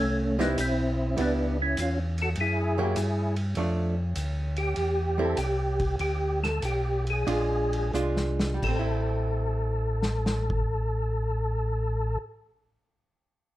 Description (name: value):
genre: soul jazz organ trio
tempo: 86-101 BPM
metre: 4/4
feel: swing 69% on 8ths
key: A minor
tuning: A4 = 440 Hz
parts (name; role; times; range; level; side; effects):
- percussive tonewheel organ; melody; 0.0-12.2 s; A3 to A4; -29 LUFS; equal; slow rotary speaker, chorus vibrato
- mellow tonewheel organ; bass; 0.0-12.2 s; A1 to G2; -28 LUFS; equal; slow rotary speaker
- archtop guitar, miked and amplified; accompaniment; 0.4-12.5 s; F3 to G4; -30 LUFS; right 3 dB; none
- vintage drum kit; drums; 0.4-10.6 s; crash cymbal, hi-hat, kick drum, ride cymbal, snare drum; -36 LUFS; equal; none
room: moderate large studio reverb, RT60 0.9 s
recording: none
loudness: -25 LUFS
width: side -15 dB against mid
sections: 0.0-3.6 A section; 3.6-8.6 B section; 8.6-11.4 C section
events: slowing down 3.6-8.6; drum fill 7.9-8.6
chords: 0.0 Am7; 1.2 C#m7b5; 2.4 F#7b9; 3.6 Dmadd11; 4.8 C6; 6.0 Bm7; 7.3 Bb7; 8.6 Am7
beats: 0.59 | 1.19 1.78 2.38 2.97 | 3.56 4.16 4.76 5.37 | 5.99 6.62 7.27 7.93 | 8.62 9.32 10.02 10.72